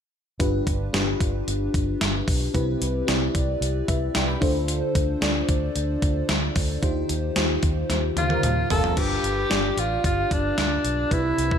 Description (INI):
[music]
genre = 1980s-style pop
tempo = 112 BPM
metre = 4/4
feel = straight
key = G mixolydian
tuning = A4 = 439 Hz
[part]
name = FM electric piano with soft pad layer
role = accompaniment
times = 0.4-11.6 s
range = G2 to B5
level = -27 LUFS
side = left 1 dB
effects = chorus
[part]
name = vintage muted fingered electric bass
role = bass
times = 0.4-11.6 s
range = F#1 to Eb2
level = -27 LUFS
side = equal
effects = none
[part]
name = clean 12-bit digital drum machine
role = drums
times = 0.4-11.6 s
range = crash cymbal, hi-hat, kick drum, snare drum, toms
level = -25 LUFS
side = equal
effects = none
[part]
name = bright alto saxophone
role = melody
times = 8.2-11.6 s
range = D4 to A4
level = -24 LUFS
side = left 1 dB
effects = ping-pong delay
[part]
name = mellow synth brass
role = stabs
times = 8.3-8.9 s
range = G3 to Bb4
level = -31 LUFS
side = equal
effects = chorus, phaser, ping-pong delay
[sound]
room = moderate plate reverb, RT60 1.5 s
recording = dreamy mix soaked in reverb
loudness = -21 LUFS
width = side -8 dB against mid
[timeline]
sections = 0.4-9.0 A section; 9.0-11.6 B section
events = band accent 6.8-9.0; drum fill 7.9-9.0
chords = 0.4 G7; 2.5 Cmaj7; 4.4 Dm7; 6.8 Eb69; 9.0 G7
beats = | 0.40 0.94 1.47 2.01 | 2.54 3.08 3.61 4.15 | 4.69 5.22 5.76 6.29 | 6.83 7.36 7.90 8.44 | 8.97 9.51 10.04 10.58 | 11.11